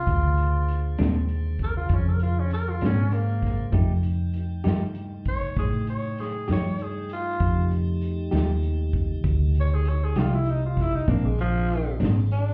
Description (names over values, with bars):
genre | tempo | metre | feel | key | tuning
slow blues | 65 BPM (dotted quarters) | 12/8 | straight | unclear | A4 = 440 Hz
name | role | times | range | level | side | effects
growling tenor saxophone | melody | 0.0-12.5 s | F3 to Db5 | -32 LUFS | equal | none
tonewheel organ | sustained chords | 0.0-12.5 s | D3 to G5 | -41 LUFS | equal | slow rotary speaker
vintage muted fingered electric bass | bass | 0.0-12.5 s | Ab1 to A2 | -26 LUFS | equal | none
vintage drum kit | drums | 0.1-12.5 s | hi-hat, kick drum, snare drum | -32 LUFS | equal | none
clean electric guitar | accompaniment | 1.0-12.2 s | Bb2 to G4 | -30 LUFS | equal | harmonic tremolo
room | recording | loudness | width
light reverb | heard muffled through a wall, club reverb, EQ | -25 LUFS | mono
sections
0.0-12.5 A section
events
tenor saxophone solo 0.0-12.5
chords
0.0 Bb9; 3.7 F9; 11.1 Bb9